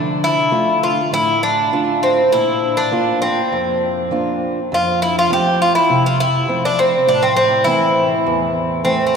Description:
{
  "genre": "greek folk, Greek bouzouki band",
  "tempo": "101 BPM",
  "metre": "4/4",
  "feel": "straight",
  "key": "A phrygian",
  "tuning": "A4 = 440 Hz",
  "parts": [
    { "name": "Greek bouzouki", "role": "melody", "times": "0.0-9.1 s", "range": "C4 to G4", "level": "-15 LUFS", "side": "equal", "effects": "none" },
    { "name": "fingerpicked acoustic archtop guitar", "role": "accompaniment", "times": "0.0-9.2 s", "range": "E2 to F4", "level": "-20 LUFS", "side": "right 2 dB", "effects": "none" }
  ],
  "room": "wet cathedral reverb, RT60 6.0 s",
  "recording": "recorded in a church or concert hall",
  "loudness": "-14 LUFS",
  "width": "side -6 dB against mid",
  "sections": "0.0-9.2 A section",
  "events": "none",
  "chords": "0.0 Dm; 2.3 Bb; 4.7 F; 7.1 Am",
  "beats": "0.52 1.12 1.72 | 2.32 2.91 3.51 4.11 | 4.70 5.30 5.89 6.48 | 7.08 7.67 8.26 8.86"
}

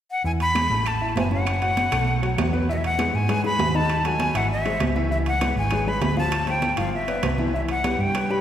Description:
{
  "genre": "latin, salsa",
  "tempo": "198 BPM",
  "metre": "4/4",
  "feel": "straight",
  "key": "E major",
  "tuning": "A4 = 441 Hz",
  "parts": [
    { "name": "breathy bright jazz flute", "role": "melody", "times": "0.1-8.4 s", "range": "D#5 to B5", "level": "-24 LUFS", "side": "left 1 dB", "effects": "none" },
    { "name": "clear upright piano", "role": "accompaniment", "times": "0.2-8.4 s", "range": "D#3 to F#5", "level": "-28 LUFS", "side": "left 3 dB", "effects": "none" },
    { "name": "hollow-body short-scale fingered electric bass", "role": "bass", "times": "0.2-8.4 s", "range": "F#1 to G#2", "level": "-25 LUFS", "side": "right 1 dB", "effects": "none" },
    { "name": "congas", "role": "percussion", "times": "0.2-8.4 s", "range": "none", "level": "-31 LUFS", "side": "right 1 dB", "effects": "none" },
    { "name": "timbales", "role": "percussion", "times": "0.4-8.3 s", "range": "none", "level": "-30 LUFS", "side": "right 3 dB", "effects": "none" },
    { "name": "claves", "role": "percussion", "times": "0.6-2.5 s", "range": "none", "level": "-38 LUFS", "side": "right 6 dB", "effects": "none" }
  ],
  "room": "wet church reverb, RT60 3.0 s",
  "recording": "recorded in a church or concert hall",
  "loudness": "-20 LUFS",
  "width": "side -10 dB against mid",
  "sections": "0.3-2.7 A section; 2.7-8.4 B section",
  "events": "none",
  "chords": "0.3 E; 0.9 A; 1.5 F#m; 2.1 B5; 2.7 Emaj9; 3.9 D#dim; 4.5 G#aug; 5.1 C#m7; 6.3 Dm7; 6.9 G6; 7.5 Cmaj7",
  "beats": "| 0.25 0.56 0.86 1.17 | 1.47 1.77 2.08 2.38 | 2.68 2.99 3.29 3.60 | 3.90 4.20 4.51 4.81 | 5.11 5.42 5.72 6.02 | 6.33 6.63 6.93 7.24 | 7.54 7.84 8.14"
}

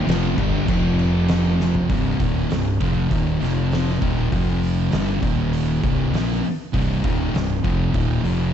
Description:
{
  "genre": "stoner and doom metal",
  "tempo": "99 BPM",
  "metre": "4/4",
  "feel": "straight",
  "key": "C minor",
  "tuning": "A4 = 440 Hz",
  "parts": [
    { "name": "crunchy overdriven guitar", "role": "riff", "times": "0.0-1.9 s", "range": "F2 to G3", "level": "-29 LUFS", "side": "right 1 dB", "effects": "none" },
    { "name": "thick fuzz guitar", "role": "riff", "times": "0.0-8.5 s", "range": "C2 to Bb3", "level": "-23 LUFS", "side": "left 7 dB", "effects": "distortion" },
    { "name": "thick fuzz guitar", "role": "riff", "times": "0.0-8.5 s", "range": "C2 to Bb3", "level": "-24 LUFS", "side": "right 9 dB", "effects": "distortion" },
    { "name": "fuzz fingered electric bass", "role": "bass", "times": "0.0-8.5 s", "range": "C1 to Bb1", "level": "-25 LUFS", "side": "equal", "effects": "overdrive" },
    { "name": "oversized low-tuned drum kit", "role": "drums", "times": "0.1-8.4 s", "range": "crash cymbal, hi-hat, kick drum, snare drum, toms", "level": "-24 LUFS", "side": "equal", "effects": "none" }
  ],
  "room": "studio reverb",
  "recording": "dark, warm production, nothing above 8.0 kHz",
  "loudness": "-18 LUFS",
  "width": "side -9 dB against mid",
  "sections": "0.0-1.9 A section; 1.9-8.5 B section",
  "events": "drum fill 1.6-1.9",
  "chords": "0.1 C5; 0.7 F5; 1.9 Cm; 3.4 F5; 4.0 Eb5; 4.3 F5; 4.9 G5; 5.2 Eb5; 5.8 Cm",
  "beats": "0.06 0.67 1.28 | 1.89 2.50 3.10 3.71 | 4.32 4.92 5.53 6.13 | 6.74 7.34 7.94"
}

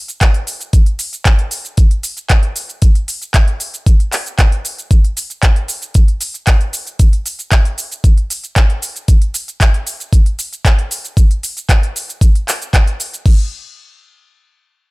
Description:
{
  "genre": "nu-disco",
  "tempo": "115 BPM",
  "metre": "4/4",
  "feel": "straight",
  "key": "none",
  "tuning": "none",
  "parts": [
    { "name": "pop drum kit", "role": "drums", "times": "0.1-13.4 s", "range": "cabasa, crash cymbal, handclaps, hi-hat", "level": "-19 LUFS", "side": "equal", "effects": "studio reverb" },
    { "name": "electronic kick drum", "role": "drums", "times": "0.2-13.4 s", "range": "none", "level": "-10 LUFS", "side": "equal", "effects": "studio reverb" }
  ],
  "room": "digital ambience",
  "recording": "none",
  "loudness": "-12 LUFS",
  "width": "side -23 dB against mid",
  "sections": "0.0-13.3 A section; 13.3-14.9 B section",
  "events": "drop 0.0-13.3",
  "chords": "none",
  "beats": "0.21 | 0.73 1.26 1.78 2.30 | 2.82 3.34 3.87 4.39 | 4.91 5.43 5.95 6.47 | 7.00 7.52 8.04 8.56 | 9.08 9.61 10.13 10.65 | 11.17 11.69 12.21 12.73 | 13.26"
}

